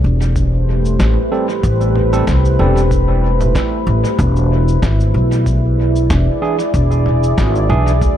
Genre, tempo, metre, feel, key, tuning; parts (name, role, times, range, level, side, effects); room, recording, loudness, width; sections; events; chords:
ambient dub; 94 BPM; 4/4; swing 55% on 16ths; A minor; A4 = 440 Hz
deep dark ambient pad; sustained chords; 0.0-8.2 s; A3 to D5; -18 LUFS; equal; chorus, built-in reverb
upright bass; bass; 0.0-8.2 s; E1 to D2; -14 LUFS; equal
electronic cabasa, snare drum and congas; drums; 0.2-8.2 s; -26 LUFS; right 1 dB; small room ambience, dub echo
electronic kick drum; drums; 0.4-8.2 s; -21 LUFS; equal; overdrive, small room ambience
overdriven tine electric piano; stabs; 1.3-7.9 s; E3 to A4; -22 LUFS; right 4 dB; dub echo
little or no reverb; echo-heavy mix; -12 LUFS; side -10 dB against mid
0.0-8.2 A section
0.0 Am7; 4.2 E7